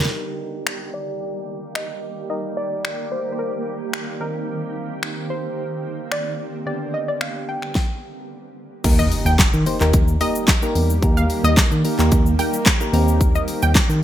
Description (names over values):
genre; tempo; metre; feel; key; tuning
dance-pop; 110 BPM; 4/4; straight; Eb major; A4 = 439 Hz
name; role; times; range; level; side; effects
soft round pluck; melody; 0.0-8.3 s; Bb4 to G5; -28 LUFS; equal; chorus, low-pass filter, digital delay
shimmering ambient pad; sustained chords; 0.0-14.0 s; D3 to G4; -30 LUFS; right 2 dB; chorus, built-in reverb, sidechain pumping, low-pass filter
soft electric-piano-like synth keys; accompaniment; 0.1-13.8 s; D3 to C5; -27 LUFS; equal; chorus, sidechain pumping, low-pass filter
pop drum kit; drums; 0.1-14.0 s; crash cymbal, finger snaps, handclaps, hi-hat, kick drum, shaker, snare drum; -19 LUFS; equal; gated reverb
tine electric piano; bass; 8.8-14.0 s; Eb2 to Eb3; -19 LUFS; equal; sidechain pumping
impact; sound effects; 8.8-11.0 s; none; -28 LUFS; equal; none
analog pluck; melody; 9.0-14.0 s; Eb5 to G5; -25 LUFS; equal; chorus
room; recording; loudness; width
digital ambience; bright 1980s-style digital production; -18 LUFS; side -12 dB against mid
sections
0.1-8.8 A section; 8.8-14.0 B section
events
filter sweep 0.1-8.8; stop 7.8-8.8; drop 8.8-14.0; impact 8.8-11.0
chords
0.1 Eb; 4.2 Cm7/Eb; 6.7 G/D; 8.8 Eb; 12.9 Cm7/Eb